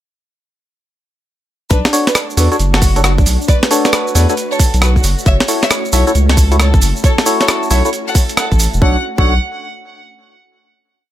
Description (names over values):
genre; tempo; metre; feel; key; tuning
UK garage, two-step garage; 135 BPM; 4/4; swing 65% on 16ths; B minor; A4 = 440 Hz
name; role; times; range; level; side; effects
warm chamber violin section; melody; 1.7-9.3 s; D4 to F#5; -20 LUFS; equal; digital delay
soft string machine; sustained chords; 2.3-9.0 s; A3 to C#5; -26 LUFS; equal; phaser, ensemble chorus, sidechain pumping
saturated sub bass; bass; 1.7-9.4 s; E1 to E2; -13 LUFS; equal; none
breakbeat sampler-style drum kit; drums; 1.7-8.7 s; hi-hat, rim click, snare drum; -17 LUFS; equal; none
electronic kick drum; drums; 1.7-9.2 s; none; -12 LUFS; equal; none
egg shaker; percussion; 1.7-8.8 s; none; -23 LUFS; right 4 dB; none
percussive organ stab; stabs; 1.9-9.3 s; D4 to C#5; -18 LUFS; left 1 dB; chorus
room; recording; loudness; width
little or no reverb; none; -11 LUFS; side -12 dB against mid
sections
1.7-8.8 drop; 8.8-10.6 final chord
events
drop 1.7-8.8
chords
1.7 Bm9; 5.0 F#m7; 8.8 Bm9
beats
| 1.71 2.15 2.60 3.04 | 3.48 3.93 4.37 4.82 | 5.26 5.71 6.15 6.60 | 7.04 7.49 7.93 8.37 | 8.82 9.26